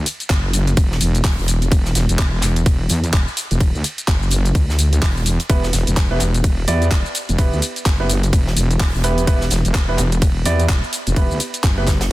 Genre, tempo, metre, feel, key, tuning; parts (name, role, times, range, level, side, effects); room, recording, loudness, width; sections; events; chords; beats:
bass house; 127 BPM; 4/4; swing 59% on 16ths; E minor; A4 = 441 Hz
wobble bass; bass; 0.0-12.1 s; E1 to E2; -18 LUFS; equal; chorus, overdrive, sidechain pumping
garage drum kit; drums; 0.1-12.1 s; handclaps, hi-hat, ride cymbal, shaker; -23 LUFS; equal; overdrive
tight metal drum kit; drums; 0.1-12.1 s; hi-hat, snare drum; -32 LUFS; right 2 dB
electronic kick drum; drums; 0.3-12.0 s; -16 LUFS; equal; overdrive
warm concert grand piano; stabs; 5.5-11.9 s; B3 to D5; -24 LUFS; right 3 dB; sidechain pumping, dub echo
little or no reverb; dense, heavily limited modern master; -15 LUFS; side -18 dB against mid
0.0-12.1 A section
0.0 Em
0.30 0.77 1.24 | 1.72 2.19 2.66 3.13 | 3.61 4.08 4.55 5.02 | 5.50 5.97 6.44 6.91 | 7.39 7.86 8.33 8.80 | 9.28 9.75 10.22 10.69 | 11.16 11.64